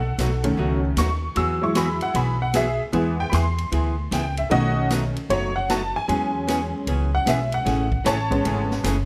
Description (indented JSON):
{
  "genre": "country, western swing",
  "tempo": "152 BPM",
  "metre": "4/4",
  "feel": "swing 65% on 8ths",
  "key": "unclear",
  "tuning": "A4 = 441 Hz",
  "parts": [
    { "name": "archtop guitar, miked and amplified", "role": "accompaniment", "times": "0.0-9.0 s", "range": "B2 to G#4", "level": "-30 LUFS", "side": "equal", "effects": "none" },
    { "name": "honky-tonk upright piano", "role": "accompaniment", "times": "0.0-8.8 s", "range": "D#3 to E6", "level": "-26 LUFS", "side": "equal", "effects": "none" },
    { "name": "upright bass", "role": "bass", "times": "0.0-9.1 s", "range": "F#1 to E2", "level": "-27 LUFS", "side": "equal", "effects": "none" },
    { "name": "swinging big-band drum kit", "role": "drums", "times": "0.2-9.0 s", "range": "hi-hat, kick drum, ride cymbal, snare drum", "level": "-34 LUFS", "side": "equal", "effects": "none" }
  ],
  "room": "light reverb",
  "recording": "none",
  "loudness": "-23 LUFS",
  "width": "mono",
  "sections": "0.0-9.1 A section",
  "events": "honky-tonk piano solo 0.0-9.1",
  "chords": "0.0 B7; 1.4 Eadd9; 2.9 E; 4.5 B7; 6.1 E6; 7.7 Amaj7"
}